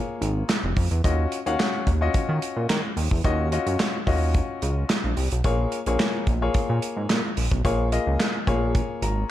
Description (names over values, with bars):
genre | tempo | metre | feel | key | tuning
early-eighties boogie funk | 109 BPM | 4/4 | straight | Eb minor | A4 = 440 Hz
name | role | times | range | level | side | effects
warm concert grand piano | accompaniment | 0.0-9.3 s | Bb3 to Bb5 | -27 LUFS | left 4 dB | none
chorused synth bass | bass | 0.2-9.2 s | F1 to Eb3 | -24 LUFS | equal | none
modern studio drum kit | drums | 0.2-9.2 s | handclaps, hi-hat, kick drum, snare drum | -25 LUFS | equal | gated reverb
room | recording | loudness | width
light reverb, small room ambience | none | -21 LUFS | side -13 dB against mid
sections
0.0-9.3 A section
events
grand piano fill 8.7-9.3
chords
0.0 Bbm7; 1.0 Ebm9; 5.4 Bbm7